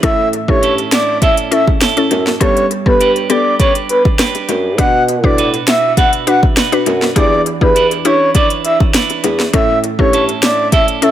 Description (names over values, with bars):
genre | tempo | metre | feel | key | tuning
dancehall | 101 BPM | 4/4 | straight | unclear | A4 = 440 Hz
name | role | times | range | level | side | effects
breathy flute-like synth lead | melody | 0.0-11.1 s | B4 to F#5 | -14 LUFS | equal | chorus, dub echo
mallet-like synth pluck | accompaniment | 0.0-11.1 s | B3 to B4 | -19 LUFS | left 4 dB | chorus, sidechain pumping, dub echo
electric guitar at the edge of break-up | arpeggios | 0.0-11.1 s | A2 to B4 | -20 LUFS | right 8 dB | none
dark bassoon | bass | 0.0-10.3 s | E2 to B2 | -18 LUFS | equal | none
afro-pop drum kit | drums | 0.0-11.1 s | hi-hat, kick drum, rim click, snare drum | -15 LUFS | equal | dub echo
bongos | percussion | 0.0-10.9 s | none | -27 LUFS | left 8 dB | none
room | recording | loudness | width
little or no reverb | echo-heavy mix | -10 LUFS | side -11 dB against mid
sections
0.0-11.1 A section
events
none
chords
0.0 A; 2.4 Gadd9; 4.8 Bm; 7.2 Em7; 9.5 A